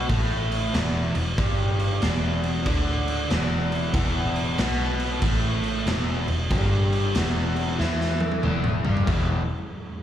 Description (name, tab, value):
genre	blues rock power trio and southern rock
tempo	94 BPM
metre	4/4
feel	swing 65% on 8ths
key	unclear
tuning	A4 = 442 Hz
part	crunchy overdriven guitar	riff	0.0-9.4 s	E2 to E4	-26 LUFS	equal	spring reverb, slapback echo
part	vintage muted fingered electric bass	bass	0.0-9.5 s	E1 to E2	-26 LUFS	equal	none
part	raw garage drum kit	drums	0.1-9.3 s	crash cymbal, kick drum, snare drum, toms	-26 LUFS	equal	none
room	little or no reverb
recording	live gig heard through the venue's PA, club reverb, vinyl crackle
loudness	-22 LUFS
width	side -11 dB against mid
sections	0.0-9.1 A section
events	drum fill 7.8-9.1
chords	0.0 E5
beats	0.10 0.74 | 1.38 2.02 2.66 3.30 | 3.94 4.58 5.22 5.87 | 6.51 7.15 7.79 8.43 | 9.07